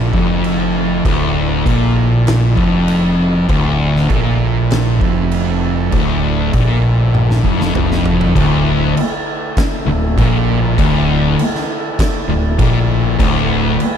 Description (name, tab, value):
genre	stoner and doom metal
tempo	99 BPM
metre	4/4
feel	straight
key	D minor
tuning	A4 = 441 Hz
part	bright tonewheel organ	sustained chords	0.0-14.0 s	D3 to B4	-27 LUFS	right 1 dB	lush chorus
part	thick fuzz guitar	riff	0.0-13.8 s	D2 to Bb2	-17 LUFS	left 10 dB	distortion
part	thick fuzz guitar	riff	0.0-13.8 s	D2 to Bb2	-17 LUFS	right 8 dB	distortion
part	growling fingered electric bass	bass	0.0-13.8 s	D1 to Bb1	-20 LUFS	equal	overdrive
part	oversized low-tuned drum kit	drums	0.1-13.9 s	crash cymbal, kick drum, snare drum, toms	-19 LUFS	equal	none
room	small room ambience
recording	dark, warm production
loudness	-12 LUFS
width	side -8 dB against mid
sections	0.0-8.4 A section; 8.4-14.0 B section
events	drum fill 7.1-8.4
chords	0.0 Dm; 8.4 D5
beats	0.43 | 1.05 1.66 2.27 2.88 | 3.49 4.10 4.71 5.32 | 5.93 6.54 7.14 7.75 | 8.36 8.96 9.57 10.17 | 10.78 11.38 11.99 12.59 | 13.19 13.80